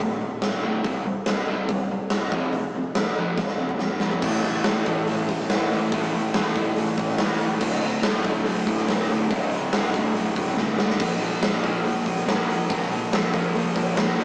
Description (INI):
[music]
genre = hard rock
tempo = 142 BPM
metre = 4/4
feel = straight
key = D minor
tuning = A4 = 438 Hz
[part]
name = crunchy overdriven guitar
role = riff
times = 0.0-14.2 s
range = D2 to C4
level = -26 LUFS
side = equal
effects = none
[part]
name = sludgy distorted guitar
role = riff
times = 0.0-14.2 s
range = D2 to C4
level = -31 LUFS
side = equal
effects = none
[part]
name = growling picked electric bass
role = bass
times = 0.0-14.2 s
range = D1 to C2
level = -36 LUFS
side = equal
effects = overdrive
[part]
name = huge arena drum kit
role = drums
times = 0.0-14.2 s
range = crash cymbal, hi-hat, kick drum, snare drum, toms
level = -24 LUFS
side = equal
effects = none
[part]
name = crunchy overdriven guitar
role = riff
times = 4.2-14.2 s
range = D2 to Bb4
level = -34 LUFS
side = equal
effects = none
[sound]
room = wet small room reverb, RT60 0.5 s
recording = rough rehearsal-room recording, warm saturation, small speaker sound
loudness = -21 LUFS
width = side -39 dB against mid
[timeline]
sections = 0.0-4.2 A section; 4.2-14.2 B section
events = drum fill 3.4-4.2, 10.6-11.0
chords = 0.0 D5; 0.8 C5; 2.3 F5; 4.2 A; 7.6 Dm; 11.0 Bb